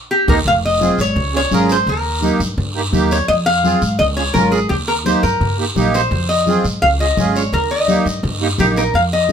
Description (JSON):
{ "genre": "latin, cumbia", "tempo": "170 BPM", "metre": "4/4", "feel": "straight", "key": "unclear", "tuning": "A4 = 440 Hz", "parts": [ { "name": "lap resonator guitar", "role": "melody", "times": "0.1-9.3 s", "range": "G4 to F5", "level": "-16 LUFS", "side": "left 1 dB", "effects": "none" }, { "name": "accordion", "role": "accompaniment", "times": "0.3-9.3 s", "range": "Bb3 to Bb4", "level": "-20 LUFS", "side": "right 5 dB", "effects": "light tremolo tuning" }, { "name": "upright bass", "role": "bass", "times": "0.3-9.3 s", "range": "F1 to Ab2", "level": "-20 LUFS", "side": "equal", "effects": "none" }, { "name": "congas", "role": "percussion", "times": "0.3-9.3 s", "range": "none", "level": "-21 LUFS", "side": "left 3 dB", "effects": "none" }, { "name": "guiro", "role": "percussion", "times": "0.3-9.3 s", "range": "none", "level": "-26 LUFS", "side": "right 3 dB", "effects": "none" } ], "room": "light reverb", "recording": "none", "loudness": "-13 LUFS", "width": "side -8 dB against mid", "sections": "0.5-9.3 A section", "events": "drum fill 0.0-0.5; band accent 0.0-0.5", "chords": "0.5 Fm; 1.2 Db; 1.9 Eb; 3.3 Fm; 4.0 Db; 4.7 Eb; 6.1 Fm; 6.8 Db; 7.5 Eb", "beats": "0.10 | 0.46 0.81 1.17 1.52 | 1.87 2.23 2.58 2.93 | 3.29 3.64 3.99 4.35 | 4.70 5.05 5.41 5.76 | 6.12 6.47 6.82 7.18 | 7.53 7.88 8.24 8.59 | 8.95 9.30" }